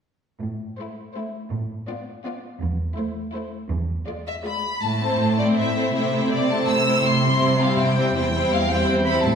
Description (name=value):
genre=classical, dramatic, fast romantic movement for symphony orchestra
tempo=163 BPM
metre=3/4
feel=rubato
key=A minor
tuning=A4 = 440 Hz
part: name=warm symphonic cello section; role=bass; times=0.4-9.4 s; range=E2 to C3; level=-25 LUFS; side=right 2 dB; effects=none
part: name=warm symphonic violin section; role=melody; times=0.8-9.4 s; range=C5 to E6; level=-25 LUFS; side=left 2 dB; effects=none
part: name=warm symphonic violin section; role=second line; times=0.8-9.2 s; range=E4 to C5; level=-27 LUFS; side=left 2 dB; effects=none
part: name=rich symphonic viola section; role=accompaniment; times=0.8-9.2 s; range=G3 to C4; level=-24 LUFS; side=right 1 dB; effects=none
room=wet recital hall reverb, RT60 1.3 s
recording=recorded in a church or concert hall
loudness=-20 LUFS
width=side -7 dB against mid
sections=0.4-4.8 A section; 4.8-9.4 B section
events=none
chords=0.4 Am; 1.5 Bm7b5/A; 2.6 Am/E; 3.7 E7b9; 4.8 Am; 5.9 Am/C; 7.1 C; 8.2 C/E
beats=| 0.42 0.79 1.15 | 1.52 1.88 2.24 | 2.60 2.97 3.34 | 3.71 4.08 4.45 | 4.83 5.20 5.57 | 5.94 6.32 6.68 | 7.05 7.42 7.79 | 8.16 8.52 8.89 | 9.25